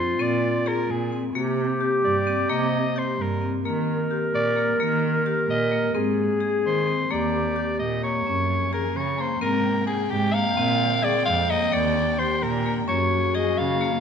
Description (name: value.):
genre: contemporary instrumental, chamber music in an uneven meter.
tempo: 260 BPM (eighths).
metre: 5/8.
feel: straight.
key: Eb major.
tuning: A4 = 440 Hz.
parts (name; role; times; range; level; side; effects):
raspy soprano saxophone; melody; 0.0-14.0 s; G4 to F5; -26 LUFS; equal; none.
breathy clarinet; second line; 0.0-8.0, 12.9-14.0 s; F4 to Bb4; -25 LUFS; left 1 dB; none.
marimba with hard mallets; arpeggios; 0.0-14.0 s; Bb3 to Ab4; -27 LUFS; left 4 dB; none.
muted cello; bass; 0.0-13.9 s; Eb2 to Eb3; -28 LUFS; right 4 dB; none.
dark symphonic string section; sustained chords; 8.3-14.0 s; C3 to G5; -33 LUFS; left 1 dB; none.
room: wet recital hall reverb, RT60 1.8 s.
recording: none.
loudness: -21 LUFS.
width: side -7 dB against mid.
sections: 0.0-8.3 A section; 8.3-14.0 B section.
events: none.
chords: 0.0 Bb9; 1.3 Cm7; 3.7 Eb; 6.0 Ab; 7.1 Ebmaj7; 8.3 Gbmaj9; 9.4 Abmaj9; 10.6 Bb13; 11.7 Ebmaj7; 12.9 Gbmaj9.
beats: | 0.20 0.43 0.66 0.89 1.12 | 1.35 1.58 1.81 2.04 2.27 | 2.50 2.73 2.96 3.19 3.42 | 3.65 3.88 4.11 4.34 4.57 | 4.80 5.04 5.27 5.50 5.73 | 5.96 6.19 6.42 6.65 6.88 | 7.11 7.34 7.57 7.80 8.04 | 8.27 8.50 8.73 8.96 9.19 | 9.42 9.65 9.88 10.11 10.35 | 10.58 10.81 11.04 11.27 11.50 | 11.73 11.96 12.19 12.43 12.66 | 12.89 13.12 13.35 13.58 13.81.